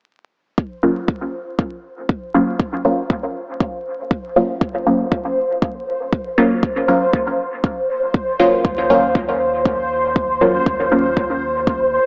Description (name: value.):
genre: dub techno.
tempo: 119 BPM.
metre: 4/4.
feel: swing 55% on 16ths.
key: Eb dorian.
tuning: A4 = 440 Hz.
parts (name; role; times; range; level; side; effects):
electronic kick drum; drums; 0.6-11.8 s; none; -22 LUFS; equal; none.
bubbling stepped-filter texture; texture; 0.6-12.1 s; C5; -24 LUFS; equal; chorus, built-in reverb, sidechain pumping.
filtered dub chord stab; stabs; 0.8-11.1 s; Gb3 to F4; -20 LUFS; equal; chorus, phaser, sidechain pumping, dub echo.
soft dub sub bass; bass; 8.6-12.0 s; Eb2; -36 LUFS; equal; transformer saturation, sidechain pumping.
room: wet spring reverb, RT60 2.5 s.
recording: dry, gritty hardware recording, vinyl crackle, small speaker sound.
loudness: -19 LUFS.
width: mono.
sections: 0.6-12.1 A section.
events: none.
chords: 0.6 Ebm9.